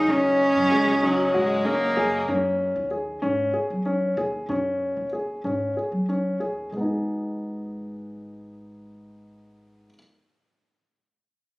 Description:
contemporary instrumental, chamber music in an uneven meter; 188 BPM (eighths); 7/8; straight; G# minor; A4 = 441 Hz
rich cello; melody; 0.0-1.7 s; C#4 to D#4; -22 LUFS; right 1 dB
pedal harmonium; sustained chords; 0.0-2.2 s; C#3 to D#5; -27 LUFS; left 1 dB
warm grand piano; arpeggios; 0.0-10.0 s; G#3 to G#4; -25 LUFS; left 1 dB
upright bass; bass; 0.0-9.9 s; G#1 to F#3; -32 LUFS; equal
clear viola; second line; 0.7-2.3 s; F#3 to A#3; -27 LUFS; equal
moderate recital hall reverb, RT60 1.8 s; recorded on a phone in the room, studio reverb, compression; -22 LUFS; side -22 dB against mid
0.0-2.3 A section; 2.3-6.7 B section; 6.7-11.3 C section
0.0 D#m7; 2.3 F#sus2; 6.7 G#m
| 0.08 0.40 0.71 1.02 1.34 1.65 1.97 | 2.28 2.59 2.91 3.22 3.54 3.85 4.17 | 4.49 4.80 5.12 5.44 5.76 6.08 6.40 | 6.72 7.05 7.37 7.69 8.02 8.34 8.66 | 8.99 9.31 9.63 9.96

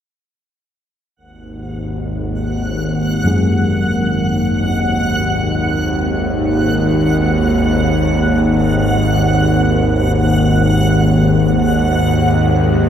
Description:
dark ambient drone; free time; A4 = 438 Hz
bowed-like drone; drone; 1.5-12.9 s; G#1 to D#2; -14 LUFS; equal; built-in reverb
backwards swelling texture; texture; 2.5-12.9 s; F#5; -22 LUFS; right 1 dB; built-in reverb, ensemble chorus, shimmer reverb
gamelan-type bossed gongs; arpeggios; 3.2-8.7 s; F#2 to G#3; -20 LUFS; left 1 dB; tape echo
wet lush hall reverb, RT60 2.6 s; dreamy mix soaked in reverb; -13 LUFS; side -9 dB against mid
1.2-12.9 A section
1.2 G#5
free time

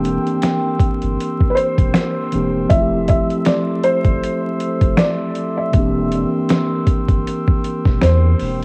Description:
lo-fi hip hop; 79 BPM; 4/4; swing 56% on 16ths; A4 = 440 Hz
felt-muted upright piano; melody; 0.0-8.6 s; B4 to G5; -24 LUFS; equal; low-pass filter, cassette tape, tape echo
mellow tine electric piano; accompaniment; 0.0-8.6 s; E3 to G4; -23 LUFS; equal; cassette tape, low-pass filter
glass harmonica; sustained chords; 0.0-8.6 s; A4 to E6; -31 LUFS; equal; low-pass filter, cassette tape
soft dub sub bass; bass; 0.0-8.6 s; E1 to E2; -22 LUFS; equal
dusty soul sampler-style drum kit; drums; 0.1-8.6 s; finger snaps, hi-hat, kick drum, snare drum; -20 LUFS; equal; overdrive, cassette tape
moderate spring reverb, RT60 2.3 s; home recording on cassette, vinyl crackle; -17 LUFS; mono
0.0-8.6 A section
0.0 C7/E; 2.7 Fmaj7; 5.7 C7/E
0.43 1.19 1.95 | 2.71 3.47 4.23 4.99 | 5.75 6.50 7.26 8.02

